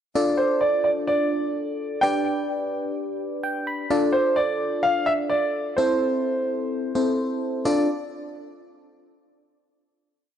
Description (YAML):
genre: pop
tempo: 128 BPM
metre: 4/4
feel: straight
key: D dorian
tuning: A4 = 439 Hz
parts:
  - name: FM electric piano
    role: accompaniment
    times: 0.2-7.9 s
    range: C4 to B5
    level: -24 LUFS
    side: left 1 dB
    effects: chorus, phaser
  - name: warm grand piano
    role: melody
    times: 0.4-7.9 s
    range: C5 to G5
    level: -23 LUFS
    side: right 1 dB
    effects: analog delay
room: moderate lush hall reverb, RT60 2.5 s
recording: none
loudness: -21 LUFS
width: side -9 dB against mid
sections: 0.2-7.7 verse; 7.7-9.5 final chord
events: FM electric piano fill 3.2-3.9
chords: 0.2 Dm; 2.0 G; 3.9 Dm; 5.8 Am; 7.7 Dm